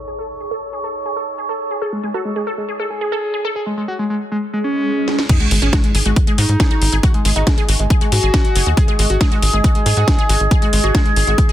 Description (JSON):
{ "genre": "psychedelic trance", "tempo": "138 BPM", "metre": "4/4", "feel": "straight", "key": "unclear", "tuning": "A4 = 444 Hz", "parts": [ { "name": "overtone-sweeping drone", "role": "sustained chords", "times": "0.0-11.5 s", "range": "G#4 to C#5", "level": "-25 LUFS", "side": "right 1 dB", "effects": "chorus, built-in reverb, sidechain pumping" }, { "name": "impact and swell", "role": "sound effects", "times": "0.0-0.1, 4.5-7.0 s", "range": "none", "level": "-25 LUFS", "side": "equal", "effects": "none" }, { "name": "warbly tape-like pad", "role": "texture", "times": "0.0-11.5 s", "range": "D#4 to D#5", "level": "-31 LUFS", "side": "right 4 dB", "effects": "chorus, built-in reverb, sidechain pumping" }, { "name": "wide unison pluck", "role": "riff", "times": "0.1-11.5 s", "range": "F#4 to A4", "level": "-27 LUFS", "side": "moving between left 3 dB and right 4 dB", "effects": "auto-pan, sidechain pumping, dub echo" }, { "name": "overdriven synth lead", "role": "melody", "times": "1.8-11.5 s", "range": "G#3 to G#4", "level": "-21 LUFS", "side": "equal", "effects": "phaser, sidechain pumping, dub echo" }, { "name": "techno drum kit", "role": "drums", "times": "5.1-11.5 s", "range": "crash cymbal, hi-hat, snare drum", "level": "-21 LUFS", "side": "equal", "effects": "none" }, { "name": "electronic kick drum", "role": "drums", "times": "5.3-11.5 s", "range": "none", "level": "-15 LUFS", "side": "equal", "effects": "overdrive" }, { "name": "tight sequencer bass", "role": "bass", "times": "5.5-11.3 s", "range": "F#1 to G#2", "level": "-16 LUFS", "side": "equal", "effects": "tube saturation" } ], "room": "light reverb, digital ambience", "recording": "dense, heavily limited modern master, low-pass filter", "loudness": "-14 LUFS", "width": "side -12 dB against mid", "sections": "0.0-5.3 A section; 5.3-11.5 B section", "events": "filter sweep on synth arpeggio sound 0.0-5.3; filter sweep 0.0-5.3; swell 4.5-5.3; drum fill 5.1; drop 5.3-11.5; impact 5.3-7.0", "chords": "0.0 G#5" }